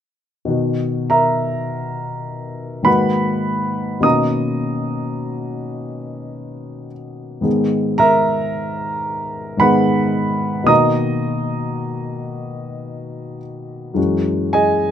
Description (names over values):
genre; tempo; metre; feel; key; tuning
classical, impressionist solo piano; 48-57 BPM; 3/4; rubato; B major; A4 = 439 Hz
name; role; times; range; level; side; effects
warm grand piano; solo; 0.5-14.9 s; F#2 to D#6; -17 LUFS; equal; none
room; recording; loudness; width
light reverb; close, detailed microphones; -16 LUFS; side -9 dB against mid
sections
0.5-14.9 A section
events
none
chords
0.5 Bmaj7; 2.9 G#m9; 4.0 Bmaj9; 7.5 G#madd9; 10.7 Bmaj7; 14.0 F#7sus2